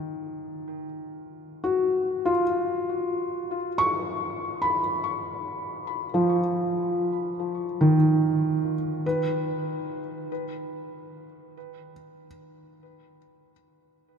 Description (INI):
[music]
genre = ambient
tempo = 72 BPM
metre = 4/4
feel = straight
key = B lydian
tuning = A4 = 440 Hz
[part]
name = felt-muted upright piano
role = solo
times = 0.0-14.2 s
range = D#3 to C#6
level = -24 LUFS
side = equal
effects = ping-pong delay
[sound]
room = wet cathedral reverb, RT60 5.5 s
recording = none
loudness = -24 LUFS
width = side -6 dB against mid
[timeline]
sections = 0.0-9.0 A section; 9.0-12.4 B section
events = none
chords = 0.0 Badd9; 9.0 B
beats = 0.71 1.54 | 2.38 3.21 4.04 4.88 | 5.71 6.54 7.38 8.21 | 9.04 9.88 10.71 11.54